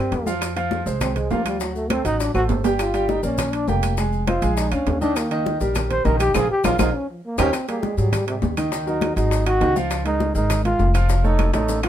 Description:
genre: Afro-Cuban jazz.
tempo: 202 BPM.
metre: 4/4.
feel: straight.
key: Eb major.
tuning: A4 = 440 Hz.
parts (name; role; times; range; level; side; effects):
breathy trombone; melody; 0.0-11.9 s; C3 to C5; -23 LUFS; equal; none.
warm concert grand piano; accompaniment; 0.0-11.9 s; Eb3 to Ab5; -25 LUFS; right 2 dB; none.
upright bass; bass; 0.0-11.9 s; F1 to Ab2; -23 LUFS; equal; none.
bongos; percussion; 0.1-11.9 s; none; -31 LUFS; left 7 dB; none.
congas; percussion; 0.1-11.9 s; none; -29 LUFS; left 3 dB; none.
maracas; percussion; 0.1-11.9 s; none; -37 LUFS; left 5 dB; none.
timbales; percussion; 0.1-11.9 s; none; -28 LUFS; right 8 dB; none.
claves; percussion; 0.4-11.9 s; none; -34 LUFS; left 6 dB; none.
room: light reverb.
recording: minimal, uncompressed stereo recording.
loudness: -18 LUFS.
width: side -11 dB against mid.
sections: 0.0-7.5 A section; 7.5-11.9 A section.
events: trombone solo 0.0-11.9; drum fill 2.3-2.8, 6.6-7.5, 11.4-11.9; band accent 6.3-7.5.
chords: 0.4 Fm; 1.6 D7; 2.8 Gm7; 4.0 Fm7; 4.6 Bb7; 5.2 Eb; 6.3 Bb5; 6.9 Eb; 7.5 Ab5; 8.7 Ebm; 9.3 Ab5; 9.9 Db69; 11.1 Faug7.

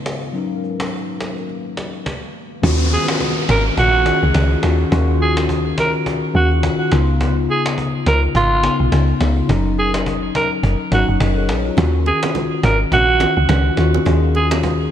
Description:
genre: afrobeats.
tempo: 105 BPM.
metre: 4/4.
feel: swing 58% on 16ths.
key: Eb minor.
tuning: A4 = 439 Hz.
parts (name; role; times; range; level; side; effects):
mellow tine electric piano; accompaniment; 0.0-14.9 s; Db3 to Eb5; -20 LUFS; left 4 dB; analog chorus.
deep dark ambient pad; sustained chords; 0.0-2.0 s; Eb3 to F5; -35 LUFS; equal; chorus, built-in reverb.
cajon; drums; 0.1-14.8 s; none; -25 LUFS; right 1 dB; vintage 12-bit sampler grit.
deep log drum bass; bass; 2.6-14.9 s; Gb1 to Eb2; -17 LUFS; equal; none.
downlifter; sound effects; 2.6-7.2 s; none; -26 LUFS; equal; none.
growling alto saxophone; melody; 2.9-14.5 s; F4 to Bb4; -19 LUFS; right 2 dB; digital delay.
congas and bongos; percussion; 11.8-14.8 s; none; -26 LUFS; right 10 dB; none.
room: light reverb, small room ambience.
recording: bright 1980s-style digital production.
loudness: -14 LUFS.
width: side -10 dB against mid.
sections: 0.0-2.6 A section; 2.6-14.9 B section.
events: none.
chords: 0.3 Gb6; 2.6 Ebm9; 6.9 Db9; 9.5 Gb6; 11.8 Ebm9.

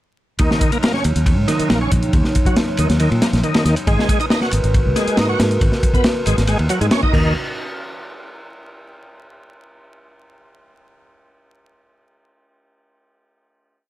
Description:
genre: breakbeat, breaks.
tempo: 138 BPM.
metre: 4/4.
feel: straight.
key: Eb minor.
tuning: A4 = 440 Hz.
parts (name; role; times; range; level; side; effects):
dark analog pad; sustained chords; 0.4-7.3 s; Gb3 to Eb5; -25 LUFS; right 1 dB; wide subtle chorus, sidechain pumping.
bright tonewheel organ; riff; 0.4-7.3 s; Eb3 to Gb4; -21 LUFS; equal; overdrive, chorus vibrato, slow rotary speaker, vintage 12-bit sampler grit, digital delay.
fingered electric bass; bass; 0.4-7.3 s; Ab1 to Bb2; -18 LUFS; equal; none.
crunchy breakbeat drum kit; drums; 0.4-7.2 s; crash cymbal, kick drum, ride cymbal, snare drum; -18 LUFS; equal; none.
electronic hi-hat; drums; 0.4-7.0 s; none; -31 LUFS; right 1 dB; none.
room: light reverb.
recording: vinyl crackle.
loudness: -14 LUFS.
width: side -15 dB against mid.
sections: 0.4-7.4 groove; 7.4-9.1 final hit.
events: none.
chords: 0.4 Ebm7; 3.9 Abm9; 7.1 Ebm7; 7.4 N.C..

